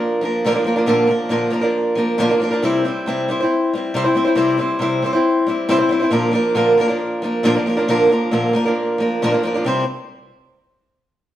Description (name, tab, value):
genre	rock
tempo	137 BPM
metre	4/4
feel	straight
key	C mixolydian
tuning	A4 = 440 Hz
part	picked old ladder-braced acoustic guitar	accompaniment	0.0-9.8 s	Bb2 to C5	-16 LUFS	equal	none
room	wet stone room reverb, RT60 1.3 s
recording	band playing live in one room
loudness	-15 LUFS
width	side -12 dB against mid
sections	0.0-9.7 A section; 9.7-11.4 B section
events	none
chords	0.0 Bb; 2.6 C; 6.1 Bb; 9.7 C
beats	0.01 0.44 | 0.88 1.32 1.75 2.19 | 2.63 3.06 3.50 3.94 | 4.38 4.82 5.26 5.70 | 6.14 6.58 7.02 7.46 | 7.90 8.34 8.78 9.22 | 9.65